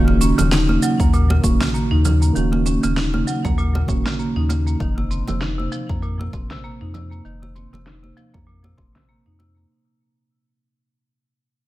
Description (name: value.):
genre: organic downtempo.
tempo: 98 BPM.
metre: 4/4.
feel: swing 56% on 16ths.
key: unclear.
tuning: A4 = 440 Hz.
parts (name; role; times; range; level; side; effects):
mellow tine electric piano; accompaniment; 0.0-4.8 s; Eb3 to Gb4; -26 LUFS; right 4 dB; medium stereo tremolo, sidechain pumping, digital delay.
marimba with hard mallets; arpeggios; 0.0-9.7 s; Bb2 to Eb4; -23 LUFS; equal; low-pass filter, digital delay.
warm sub bass; bass; 0.0-9.7 s; Eb1 to F2; -20 LUFS; equal; sidechain pumping.
congas; percussion; 0.1-9.5 s; none; -27 LUFS; right 4 dB; none.
electronic shaker and snare drum; drums; 0.2-9.7 s; none; -27 LUFS; equal; overdrive, low-pass filter on perc, studio ambience, low-pass filter on snare.
electronic kick drum; drums; 1.0-9.1 s; none; -22 LUFS; equal; overdrive, studio ambience.
room: light reverb.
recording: none.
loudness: -17 LUFS.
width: side -16 dB against mid.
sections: 0.0-9.7 A section.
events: fade-out 0.0-9.7; filter sweep on drum 0.0-9.7; filter sweep on marimba 0.0-9.7.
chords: 0.0 Ebm7; 4.8 F5.